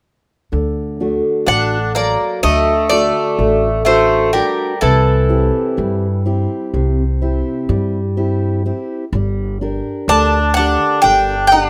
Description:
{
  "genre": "greek folk",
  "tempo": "126 BPM (eighths)",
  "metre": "9/8",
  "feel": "straight",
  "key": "unclear",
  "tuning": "A4 = 440 Hz",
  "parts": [
    { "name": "fingerpicked steel-string acoustic guitar", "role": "accompaniment", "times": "0.5-11.7 s", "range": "C3 to Bb4", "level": "-22 LUFS", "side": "equal", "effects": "none" },
    { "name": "upright bass", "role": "bass", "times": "0.5-11.7 s", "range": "G1 to G2", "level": "-21 LUFS", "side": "equal", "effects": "none" },
    { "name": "Greek bouzouki", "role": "melody", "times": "1.5-11.7 s", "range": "A4 to A5", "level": "-19 LUFS", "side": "equal", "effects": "none" },
    { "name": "Greek bouzouki", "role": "second line", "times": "1.5-11.7 s", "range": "E3 to D4", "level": "-20 LUFS", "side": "equal", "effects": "none" }
  ],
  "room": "small room ambience",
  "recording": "rough home demo mix",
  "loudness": "-16 LUFS",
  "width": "mono",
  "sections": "0.5-11.7 A section",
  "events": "none",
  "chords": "0.5 D; 4.8 C; 9.1 Gm",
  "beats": "| 0.52 1.00 1.48 1.96 2.43 2.91 3.39 3.87 4.34 | 4.82 5.30 5.78 6.26 6.74 7.21 7.69 8.17 8.65 | 9.13 9.61 10.09 10.56 11.04 11.52"
}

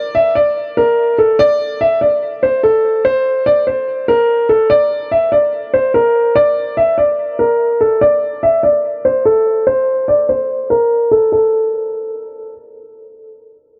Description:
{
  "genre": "hip hop",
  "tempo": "145 BPM",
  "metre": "4/4",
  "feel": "half-time",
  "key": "unclear",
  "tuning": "A4 = 441 Hz",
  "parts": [
    { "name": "dark concert grand piano", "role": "solo", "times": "0.0-12.5 s", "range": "A4 to E5", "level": "-14 LUFS", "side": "equal", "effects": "low-pass filter" }
  ],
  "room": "light reverb, small room ambience",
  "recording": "dark, warm production, low-pass filter",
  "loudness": "-14 LUFS",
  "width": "mono",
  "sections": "0.0-11.3 A section; 11.3-13.8 B section",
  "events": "filter sweep 0.0-11.3",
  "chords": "none",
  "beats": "0.15 0.56 0.98 | 1.39 1.80 2.22 2.63 | 3.05 3.46 3.87 4.29 | 4.70 5.12 5.53 5.94 | 6.36 6.77 7.18 7.60 | 8.01 8.43 8.84 9.25 | 9.67 10.08 10.49 10.91 | 11.32 11.74 12.15"
}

